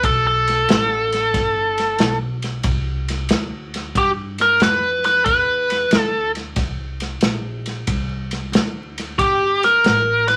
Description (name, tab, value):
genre	electric blues shuffle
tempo	92 BPM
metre	4/4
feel	swing 67% on 8ths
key	G mixolydian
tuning	A4 = 441 Hz
part	biting lead guitar	melody	0.0-10.4 s	G4 to B4	-18 LUFS	equal	overdrive
part	upright bass	bass	0.0-10.4 s	G1 to G2	-30 LUFS	equal	none
part	natural country drum kit	drums	0.0-10.4 s	kick drum, ride cymbal, snare drum	-24 LUFS	equal	none
room	moderate club reverb, RT60 0.5 s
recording	vinyl crackle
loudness	-19 LUFS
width	mono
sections	0.0-3.9 A section; 3.9-10.4 B section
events	lead electric guitar solo 0.0-3.9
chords	0.0 N.C.; 1.3 Gadd9; 3.9 G7; 6.6 Csus2; 9.2 Gsus2